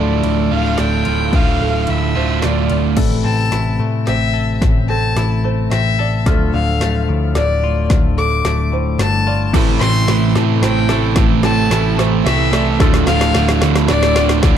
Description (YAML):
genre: post-rock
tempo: 110 BPM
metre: 3/4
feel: straight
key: D minor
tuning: A4 = 440 Hz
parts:
  - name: rich violin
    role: melody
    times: 0.0-14.4 s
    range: D5 to D6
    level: -21 LUFS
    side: left 4 dB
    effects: tape echo
  - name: pedal steel guitar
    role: sustained chords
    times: 0.0-14.6 s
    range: C3 to A4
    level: -26 LUFS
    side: left 4 dB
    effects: lush chorus
  - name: felt-muted upright piano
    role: arpeggios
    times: 0.0-14.4 s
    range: A4 to D5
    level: -29 LUFS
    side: right 8 dB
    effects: tape echo
  - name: semi-hollow electric guitar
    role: arpeggios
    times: 0.0-14.6 s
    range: D2 to A4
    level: -24 LUFS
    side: left 9 dB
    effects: tape echo
  - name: crunchy overdriven guitar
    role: riff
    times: 0.0-3.0, 9.5-14.6 s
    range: D2 to F4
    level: -18 LUFS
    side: right 12 dB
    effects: none
  - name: hollow-body short-scale picked electric bass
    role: bass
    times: 0.0-14.6 s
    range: D1 to A2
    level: -18 LUFS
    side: left 1 dB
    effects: none
  - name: deep house drum kit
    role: drums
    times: 0.2-14.6 s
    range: crash cymbal, hi-hat, kick drum, ride cymbal, snare drum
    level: -18 LUFS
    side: left 1 dB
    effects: none
room: little or no reverb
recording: dark, warm production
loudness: -13 LUFS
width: side -9 dB against mid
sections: 0.0-3.0 A section; 3.0-14.6 B section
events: build-up 3.0-14.6; drum fill 3.0-14.6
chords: 0.0 Dm; 3.0 Am; 6.3 Dm; 9.5 Am; 12.8 Dm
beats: 0.24 0.79 | 1.34 1.89 2.43 | 2.98 3.53 4.08 | 4.62 5.17 5.72 | 6.27 6.81 7.36 | 7.91 8.45 9.00 | 9.54 10.09 10.63 | 11.18 11.72 12.27 | 12.81 13.35 13.90 | 14.44